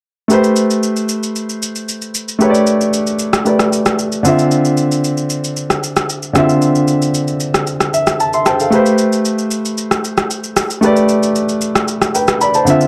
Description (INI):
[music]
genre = amapiano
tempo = 114 BPM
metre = 4/4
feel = straight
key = A minor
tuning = A4 = 437 Hz
[part]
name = warm grand piano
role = accompaniment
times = 0.3-12.9 s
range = D3 to C6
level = -16 LUFS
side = equal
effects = none
[part]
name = electronic shaker and rim click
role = drums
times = 0.3-12.9 s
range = none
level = -20 LUFS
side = equal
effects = none
[sound]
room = moderate plate reverb, RT60 2.1 s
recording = dark, warm production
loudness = -15 LUFS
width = mono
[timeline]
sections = 0.3-12.9 A section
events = grand piano fill 7.7-8.7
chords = 0.3 Am9; 4.2 Dm9; 8.7 Am9